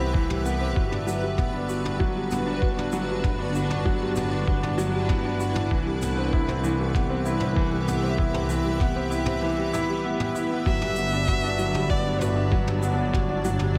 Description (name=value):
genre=piano and strings electronica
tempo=97 BPM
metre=4/4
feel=straight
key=G major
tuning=A4 = 440 Hz
part: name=granular cloud pad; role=sustained chords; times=0.0-13.8 s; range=F#3 to E5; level=-34 LUFS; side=equal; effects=built-in reverb, analog chorus, sidechain pumping
part: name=warm upright piano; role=riff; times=0.0-13.8 s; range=E3 to G4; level=-30 LUFS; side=equal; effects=delay
part: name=clear chamber double bass section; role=bass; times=0.0-13.8 s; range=G1 to C2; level=-30 LUFS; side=equal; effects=sidechain pumping
part: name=electronic kick drum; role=drums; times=0.1-13.8 s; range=none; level=-27 LUFS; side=equal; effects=none
part: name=toms and shaker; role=drums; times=0.3-13.7 s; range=none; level=-38 LUFS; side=equal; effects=none
part: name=warm violin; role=melody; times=10.7-13.8 s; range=B4 to E5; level=-32 LUFS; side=equal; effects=delay
room=moderate plate reverb, RT60 2.5 s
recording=dreamy mix soaked in reverb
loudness=-25 LUFS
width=mono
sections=0.0-13.8 A section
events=none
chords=0.0 Cmaj7; 0.8 Gmaj7; 5.7 Cmaj7; 10.7 Gmaj7